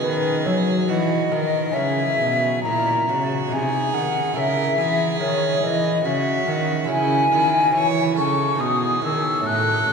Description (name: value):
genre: classical, baroque-style sonata movement with continuo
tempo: 70 BPM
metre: 3/4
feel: rubato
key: unclear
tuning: A4 = 440 Hz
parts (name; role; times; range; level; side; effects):
- mellow hollow silver concert flute; melody; 0.0-9.9 s; B4 to F#6; -21 LUFS; left 3 dB; none
- rich violin; second line; 0.0-9.9 s; E4 to C#5; -26 LUFS; right 6 dB; none
- lute; accompaniment; 0.0-9.9 s; A2 to G#4; -29 LUFS; right 1 dB; none
- rich cello; bass; 0.0-9.9 s; A2 to F#3; -24 LUFS; right 1 dB; none
room: wet cathedral reverb, RT60 6.4 s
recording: recorded in a church or concert hall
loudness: -18 LUFS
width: side -5 dB against mid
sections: 0.0-9.9 A section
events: none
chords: 0.0 B; 1.8 C#m; 3.5 G#/B#; 4.4 C#m; 8.6 G#m/B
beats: 0.03 0.89 | 1.76 2.65 3.52 | 4.36 5.20 6.05 | 6.89 7.74 8.60 | 9.46